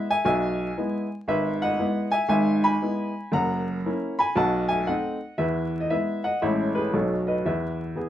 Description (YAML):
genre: jazz, stride piano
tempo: 117 BPM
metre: 4/4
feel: swing 64% on 8ths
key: E major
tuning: A4 = 437 Hz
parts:
  - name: clear upright piano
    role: solo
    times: 0.0-8.1 s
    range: F#1 to B5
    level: -22 LUFS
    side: equal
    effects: none
room: moderate small room ambience, RT60 0.5 s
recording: vinyl crackle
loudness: -22 LUFS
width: side -11 dB against mid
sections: 0.0-8.1 A section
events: none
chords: 0.0 E; 1.3 E/G#; 3.3 F#7; 4.4 B7b9; 5.4 E; 6.4 Amaj7; 6.9 B7; 7.4 E